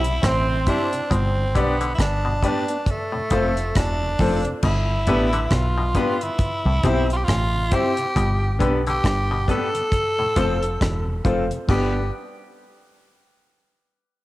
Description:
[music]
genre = roots reggae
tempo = 68 BPM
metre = 4/4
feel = swing 58% on 16ths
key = G mixolydian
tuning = A4 = 440 Hz
[part]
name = raspy tenor saxophone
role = melody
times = 0.0-12.1 s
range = A3 to A4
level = -25 LUFS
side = equal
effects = tape echo
[part]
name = bright trombone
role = second line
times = 0.0-0.9 s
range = C4 to E4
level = -27 LUFS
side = right 2 dB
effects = cassette tape, tape echo
[part]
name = deep dub fingered electric bass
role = bass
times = 0.0-12.1 s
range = E1 to C2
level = -23 LUFS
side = equal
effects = tube saturation
[part]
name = deep reggae drum kit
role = drums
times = 0.0-11.9 s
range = crash cymbal, hi-hat, kick drum, rim click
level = -24 LUFS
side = equal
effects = cassette tape
[part]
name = mellow tonewheel organ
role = accompaniment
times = 0.1-12.0 s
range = F2 to E4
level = -35 LUFS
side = left 1 dB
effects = none
[part]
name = mellow electric guitar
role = accompaniment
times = 0.7-12.0 s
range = A3 to G4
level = -32 LUFS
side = right 3 dB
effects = cassette tape, tape echo
[part]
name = bright concert grand piano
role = stabs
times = 0.7-12.0 s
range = B3 to E5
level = -27 LUFS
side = left 3 dB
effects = cassette tape
[part]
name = muted clav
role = arpeggios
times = 1.1-12.0 s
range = A2 to D3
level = -31 LUFS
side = left 3 dB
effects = cassette tape
[sound]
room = moderate spring reverb, RT60 2.1 s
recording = home recording on cassette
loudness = -19 LUFS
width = side -17 dB against mid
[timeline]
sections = 0.0-4.6 A section; 4.6-11.7 B section; 11.7-14.2 C section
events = none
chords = 0.0 C; 1.1 G; 2.9 F; 4.6 G; 6.4 C; 8.2 G; 9.9 F; 11.7 G

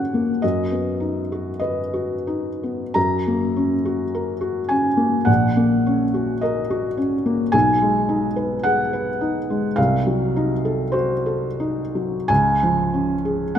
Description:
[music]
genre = classical, romantic nocturne for solo piano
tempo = 42-55 BPM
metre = 4/4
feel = rubato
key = F# major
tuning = A4 = 440 Hz
[part]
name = felt-muted upright piano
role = solo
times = 0.0-13.6 s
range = A#1 to A#5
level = -18 LUFS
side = equal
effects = none
[sound]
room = wet scoring stage reverb, RT60 2.0 s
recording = none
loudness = -18 LUFS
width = side -9 dB against mid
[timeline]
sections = 0.0-13.6 A section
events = none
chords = 0.4 B/F#; 3.0 F#; 5.3 F#/A#; 7.5 G#m/B; 9.8 Cdim7; 12.3 C#

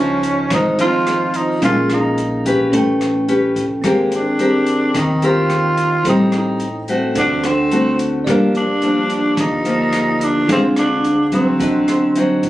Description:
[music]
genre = bossa nova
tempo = 108 BPM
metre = 4/4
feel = straight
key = unclear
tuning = A4 = 442 Hz
[part]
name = growling tenor saxophone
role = melody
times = 0.0-12.4 s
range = Bb3 to F4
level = -19 LUFS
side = right 1 dB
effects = none
[part]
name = bell-like tine electric piano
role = accompaniment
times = 0.0-12.5 s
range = C4 to G5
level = -22 LUFS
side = right 1 dB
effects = none
[part]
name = nylon-string guitar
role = accompaniment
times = 0.0-12.5 s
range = G2 to B4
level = -17 LUFS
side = left 1 dB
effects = none
[part]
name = upright bass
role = bass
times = 0.0-12.5 s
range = G1 to Eb2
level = -28 LUFS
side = equal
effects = none
[part]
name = open jazz drum kit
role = drums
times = 0.2-12.5 s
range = hi-hat, kick drum, rim click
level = -28 LUFS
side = equal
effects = none
[sound]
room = moderate studio reverb, RT60 0.7 s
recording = recorded on a phone in the room, club ambience, faint mains hum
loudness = -14 LUFS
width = side -15 dB against mid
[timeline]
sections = 0.0-12.5 A section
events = none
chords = 0.0 Dbmaj9; 1.6 Bbm7; 2.7 A9; 3.8 Abmaj9; 6.1 Am7b5; 7.2 D7; 8.3 Gm7; 10.5 Dm7b5; 11.6 D7b9

